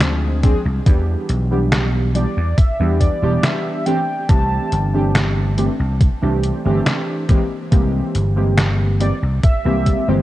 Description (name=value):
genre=vaporwave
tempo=70 BPM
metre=4/4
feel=straight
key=C major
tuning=A4 = 441 Hz
part: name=warbly lo-fi synth keys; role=accompaniment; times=0.0-10.2 s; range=E3 to Ab4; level=-21 LUFS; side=right 1 dB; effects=analog chorus, tape echo
part: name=vintage slap bass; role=bass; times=0.0-10.2 s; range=E1 to E2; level=-18 LUFS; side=equal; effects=none
part: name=detuned 8-bit digital drum machine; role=drums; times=0.0-10.0 s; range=hi-hat, snare drum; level=-20 LUFS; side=equal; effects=studio reverb, gated reverb
part: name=electronic kick drum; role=drums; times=0.4-10.0 s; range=none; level=-14 LUFS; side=equal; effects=studio reverb
part: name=warm velvety synth lead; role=melody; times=2.1-10.2 s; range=C5 to A5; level=-25 LUFS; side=equal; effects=chorus, tape echo
room=light reverb, digital ambience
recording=cassette tape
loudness=-15 LUFS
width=side -15 dB against mid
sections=0.0-10.2 A section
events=none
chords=0.0 Fm6; 0.9 Em7; 3.9 C69; 7.3 C7b13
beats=0.01 | 0.86 1.72 2.58 3.44 | 4.29 5.15 6.01 6.86 | 7.72 8.58 9.44